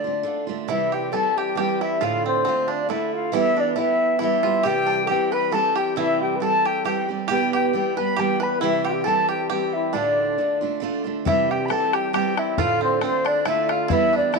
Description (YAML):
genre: celtic folk, Celtic waltz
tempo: 136 BPM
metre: 3/4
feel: swing 53% on 8ths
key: unclear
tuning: A4 = 438 Hz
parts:
  - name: silver concert flute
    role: melody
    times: 0.0-14.4 s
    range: C5 to B5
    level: -23 LUFS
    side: left 1 dB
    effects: none
  - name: mellow flugelhorn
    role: second line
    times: 0.0-14.4 s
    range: C4 to B4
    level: -27 LUFS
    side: left 12 dB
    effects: none
  - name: picked steel-string acoustic guitar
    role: accompaniment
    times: 0.0-14.4 s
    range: D2 to G4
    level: -25 LUFS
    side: right 10 dB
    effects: none
  - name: bluegrass banjo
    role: second line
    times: 0.7-14.4 s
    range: C4 to B4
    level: -29 LUFS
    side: right 7 dB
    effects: none
  - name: bodhran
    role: percussion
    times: 11.3-14.4 s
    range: none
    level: -28 LUFS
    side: left 8 dB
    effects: none
room: moderate echo chamber reverb, RT60 1.6 s, small room ambience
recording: 1960s-style stereo with parts hard left and right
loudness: -19 LUFS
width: side -3 dB against mid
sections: 0.7-11.3 A section; 11.3-14.4 A section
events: none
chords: 0.0 Dm; 0.7 C; 2.0 Dm; 3.3 Em; 4.6 C; 7.3 Em/B; 8.6 C; 9.9 Dm; 11.3 C; 12.6 Dm